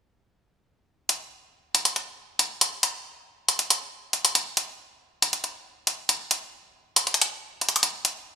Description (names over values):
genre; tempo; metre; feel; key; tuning
hip hop; 138 BPM; 4/4; half-time; none; none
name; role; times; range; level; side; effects
electronic hi-hat; drums; 1.1-8.1 s; none; -21 LUFS; left 1 dB; overdrive
room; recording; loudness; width
moderate lush hall reverb, RT60 1.9 s; small room ambience; -23 LUFS; side -8 dB against mid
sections
1.1-8.4 A section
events
none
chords
none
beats
| 1.09 1.53 1.96 2.40 | 2.83 3.27 3.70 4.13 | 4.57 5.00 5.44 5.87 | 6.31 6.74 7.18 7.61 | 8.05